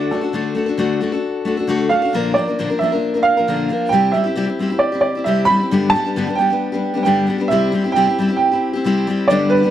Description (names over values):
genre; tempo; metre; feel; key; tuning
rock; 134 BPM; 4/4; straight; unclear; A4 = 441 Hz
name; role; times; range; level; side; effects
dark grand piano; melody; 0.0-9.7 s; A4 to B5; -18 LUFS; right 4 dB; none
picked steel-string acoustic guitar; accompaniment; 0.0-9.7 s; G2 to Bb4; -18 LUFS; left 3 dB; none
room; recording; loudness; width
studio reverb; dry, close 1970s-style studio recording; -15 LUFS; side -11 dB against mid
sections
0.0-2.1 A section; 2.1-9.3 B section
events
none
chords
0.0 D; 2.1 Bb; 3.9 C; 5.7 G; 7.5 C